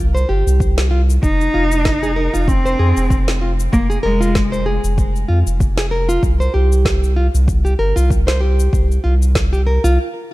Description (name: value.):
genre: organic downtempo.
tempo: 96 BPM.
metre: 4/4.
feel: swing 56% on 16ths.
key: F minor.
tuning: A4 = 439 Hz.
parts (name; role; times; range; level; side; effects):
round analog bass; bass; 0.0-10.0 s; F1 to F2; -16 LUFS; equal; sidechain pumping.
nylon-string guitar; arpeggios; 0.1-10.0 s; F4 to C5; -21 LUFS; equal; digital delay.
electronic cabasa and snare drum; drums; 0.2-10.0 s; none; -25 LUFS; equal; none.
electronic kick drum; drums; 0.6-9.5 s; none; -18 LUFS; equal; none.
warm cello; melody; 1.2-4.6 s; Ab3 to Eb4; -19 LUFS; equal; digital delay.
room: light reverb, small room reverb.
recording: dark, warm production.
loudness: -13 LUFS.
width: side -18 dB against mid.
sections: 0.0-10.3 A section.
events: break 10.0-10.3.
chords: 0.0 C5; 1.2 Fm7; 6.2 C5.